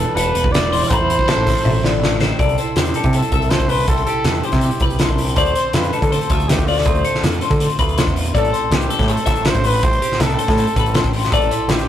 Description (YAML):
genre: math rock and midwest emo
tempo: 161 BPM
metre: 4/4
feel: straight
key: unclear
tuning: A4 = 440 Hz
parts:
  - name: clear trumpet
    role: melody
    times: 0.0-11.9 s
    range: F4 to D5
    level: -22 LUFS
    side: right 1 dB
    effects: none
  - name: twelve-string electric guitar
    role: accompaniment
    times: 0.0-11.9 s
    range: A2 to C5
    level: -27 LUFS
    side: right 4 dB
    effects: none
  - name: twelve-string electric guitar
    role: arpeggios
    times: 0.0-11.9 s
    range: G4 to B5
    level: -23 LUFS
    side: left 7 dB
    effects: spring reverb
  - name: growling picked electric bass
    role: bass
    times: 0.0-11.8 s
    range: E1 to D3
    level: -20 LUFS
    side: equal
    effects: overdrive
  - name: loose indie drum kit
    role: drums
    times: 0.2-11.9 s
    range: hi-hat, kick drum, snare drum, toms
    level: -18 LUFS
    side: equal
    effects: none
room: moderate stone room reverb, RT60 0.9 s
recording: rough rehearsal-room recording, tube saturation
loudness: -14 LUFS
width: side -11 dB against mid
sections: 0.0-2.4 A section; 2.4-11.9 B section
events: drum fill 1.6-2.4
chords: 0.0 Em7; 0.9 Am9; 2.4 C6; 5.4 Dm7; 8.3 Am7; 11.3 Fmaj7/A